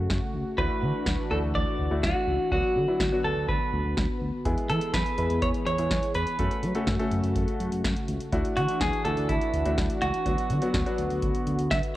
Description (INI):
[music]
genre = synth-pop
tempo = 124 BPM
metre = 4/4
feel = straight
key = unclear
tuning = A4 = 439 Hz
[part]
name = warm analog pad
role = sustained chords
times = 0.0-12.0 s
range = C#3 to G#4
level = -33 LUFS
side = equal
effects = chorus
[part]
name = smooth gliding synth bass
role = bass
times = 0.0-11.8 s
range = C#2 to F#3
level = -29 LUFS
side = equal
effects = none
[part]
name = electro analog drum machine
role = drums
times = 0.1-11.9 s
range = hi-hat, kick drum, snare drum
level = -31 LUFS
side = equal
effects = none
[part]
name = clean electric guitar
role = melody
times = 0.6-11.8 s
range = E4 to E5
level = -28 LUFS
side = right 1 dB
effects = tape echo
[part]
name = clear concert grand piano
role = accompaniment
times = 0.6-11.6 s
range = F#3 to B4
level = -32 LUFS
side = left 1 dB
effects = none
[sound]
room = light reverb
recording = worn, warbling old tape, cassette tape, warbly pitch drift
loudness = -24 LUFS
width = side -15 dB against mid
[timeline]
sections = 0.0-12.0 A section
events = none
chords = 0.0 F#m; 0.6 Dadd9; 2.5 Bm/D; 4.5 E; 6.4 F#m; 8.3 Dadd9; 10.3 Bm/D